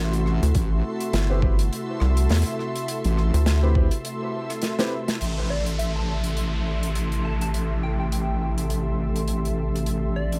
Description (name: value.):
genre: glitch hop.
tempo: 103 BPM.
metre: 4/4.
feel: swing 57% on 16ths.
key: A dorian.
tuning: A4 = 441 Hz.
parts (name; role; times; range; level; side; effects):
warm analog pad; sustained chords; 0.0-10.4 s; C3 to G4; -34 LUFS; equal; chorus, sidechain pumping.
wobble bass; bass; 0.0-10.4 s; A1; -27 LUFS; equal; chorus, tube saturation.
ethereal airy pad; texture; 0.0-10.4 s; A4 to C6; -36 LUFS; equal; ensemble chorus, built-in reverb, sidechain pumping.
big rock drum kit; drums; 0.1-10.4 s; crash cymbal, hi-hat, rim click, snare drum; -33 LUFS; equal; none.
rubbery square bass; bass; 0.4-3.9 s; G1 to E2; -22 LUFS; equal; none.
electronic kick drum; drums; 0.5-3.9 s; none; -24 LUFS; equal; overdrive.
dark concert grand piano; stabs; 1.3-4.9 s; C4 to B4; -34 LUFS; equal; sidechain pumping, dub echo.
downlifter; sound effects; 5.2-9.9 s; none; -39 LUFS; equal; none.
plucky unison lead; melody; 5.5-10.4 s; D5 to A5; -37 LUFS; equal; cassette tape, dub echo.
room: little or no reverb.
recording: echo-heavy mix.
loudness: -24 LUFS.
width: mono.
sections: 0.0-5.2 A section; 5.2-10.4 B section.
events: break 4.0-5.2; drum fill 4.6-5.2.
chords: 0.0 Am7.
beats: | 0.55 1.13 1.72 2.30 | 2.88 3.46 4.04 4.63 | 5.21 5.79 6.38 6.96 | 7.54 8.12 8.71 9.29 | 9.87.